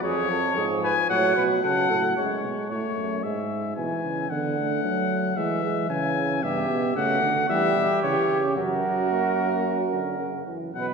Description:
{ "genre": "classical, imitative canzona for brass ensemble", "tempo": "112 BPM", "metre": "4/4", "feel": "straight", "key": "unclear", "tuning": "A4 = 442 Hz", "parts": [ { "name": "clear trumpet", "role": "melody", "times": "0.0-10.9 s", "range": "A#4 to G#5", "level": "-26 LUFS", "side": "left 5 dB", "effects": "none" }, { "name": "mellow flugelhorn", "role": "second line", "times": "0.0-2.0, 6.4-10.9 s", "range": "F#4 to C#5", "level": "-26 LUFS", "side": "right 5 dB", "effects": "none" }, { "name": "mellow euphonium", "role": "accompaniment", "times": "0.0-10.9 s", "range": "C#3 to B3", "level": "-29 LUFS", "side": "right 2 dB", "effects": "none" }, { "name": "clear tuba", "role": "bass", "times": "0.0-10.9 s", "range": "E#2 to F#3", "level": "-29 LUFS", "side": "right 2 dB", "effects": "none" } ], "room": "wet concert hall reverb, RT60 2.5 s", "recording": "minimal, uncompressed stereo recording", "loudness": "-22 LUFS", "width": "side -5 dB against mid", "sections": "0.0-2.2 A section; 2.2-10.7 B section", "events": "none", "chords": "0.0 C#/E#; 1.1 F#m/A; 2.2 F#m; 3.2 E/G#; 4.3 D; 5.4 C#m/E; 6.4 Em/G; 7.5 C#dim; 8.6 F#", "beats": "| 0.03 0.56 1.10 1.63 | 2.17 2.71 3.24 3.78 | 4.31 4.84 5.37 5.90 | 6.43 6.96 7.49 8.03 | 8.57 9.11 9.66 10.20 | 10.74" }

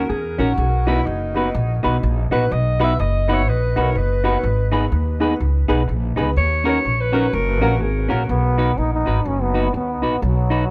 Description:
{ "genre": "ska", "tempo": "124 BPM", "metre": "4/4", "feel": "swing 61% on 8ths", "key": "B major", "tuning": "A4 = 440 Hz", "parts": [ { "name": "warm alto saxophone", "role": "melody", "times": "0.0-8.3 s", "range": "D#4 to E5", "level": "-27 LUFS", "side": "equal", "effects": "dub echo" }, { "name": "semi-hollow electric guitar", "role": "accompaniment", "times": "0.0-10.6 s", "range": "C#4 to B4", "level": "-27 LUFS", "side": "equal", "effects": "dub echo, plate reverb" }, { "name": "upright bass", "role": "bass", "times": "0.0-10.6 s", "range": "F#1 to E2", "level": "-22 LUFS", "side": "equal", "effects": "none" }, { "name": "dark upright piano", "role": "stabs", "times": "0.4-8.2 s", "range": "A#3 to B4", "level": "-29 LUFS", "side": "equal", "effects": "dub echo, plate reverb" }, { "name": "breathy trombone", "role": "melody", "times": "8.3-10.7 s", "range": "F#3 to D#4", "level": "-24 LUFS", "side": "equal", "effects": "dub echo" } ], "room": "moderate small room reverb, RT60 0.6 s", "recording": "none", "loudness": "-19 LUFS", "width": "mono", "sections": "0.0-8.3 A section; 8.3-10.7 B section", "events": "alto saxophone solo 0.0-8.3", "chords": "0.0 D#m7; 0.6 B; 4.4 G#m; 6.4 D#m7; 7.3 F#; 8.3 B", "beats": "0.10 | 0.58 1.06 1.54 2.03 | 2.51 2.99 3.47 3.96 | 4.44 4.92 5.40 5.88 | 6.36 6.85 7.33 7.81 | 8.29 8.77 9.26 9.74 | 10.22 10.70" }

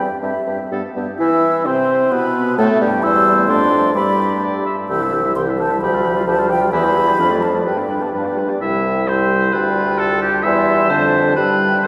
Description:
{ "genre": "quick classical-period movement for wind quintet", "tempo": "130 BPM", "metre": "2/4", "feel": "rubato", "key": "C major", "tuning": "A4 = 439 Hz", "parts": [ { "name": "mellow hollow silver concert flute", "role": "melody", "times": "0.0-11.9 s", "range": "E5 to E6", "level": "-23 LUFS", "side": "equal", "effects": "none" }, { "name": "warm oboe", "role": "second line", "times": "0.0-11.9 s", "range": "G4 to G5", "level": "-23 LUFS", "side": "equal", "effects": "none" }, { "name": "warm French horn", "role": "accompaniment", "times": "0.0-11.9 s", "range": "D3 to E4", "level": "-24 LUFS", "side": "equal", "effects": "none" }, { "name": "warm clarinet", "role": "accompaniment", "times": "0.0-11.9 s", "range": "G3 to G4", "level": "-26 LUFS", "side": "equal", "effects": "none" }, { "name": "warm bassoon", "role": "bass", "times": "0.0-11.9 s", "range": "C2 to E3", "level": "-22 LUFS", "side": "equal", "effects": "none" } ], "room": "wet cathedral reverb, RT60 5.2 s", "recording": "recorded in a church or concert hall", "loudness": "-17 LUFS", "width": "mono", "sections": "0.0-1.2 A section; 1.2-8.6 B section; 8.6-11.9 B section", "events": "none", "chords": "0.2 C/G; 0.7 G; 1.2 C/E; 2.1 G/B; 3.0 C/E; 3.5 Dm7/F; 4.0 G; 4.9 C; 5.8 G7/D; 6.7 C/E; 7.2 Dm/F; 7.7 G; 8.6 C; 9.5 G7/D; 10.4 C/E; 10.9 Dm7/F", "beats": "| 0.23 0.71 | 1.20 1.66 | 2.12 2.58 | 3.04 3.49 | 3.95 4.42 | 4.90 5.36 | 5.82 6.27 | 6.72 7.18 | 7.66 8.14 | 8.61 9.08 | 9.54 9.99 | 10.44 10.90 | 11.37 11.85" }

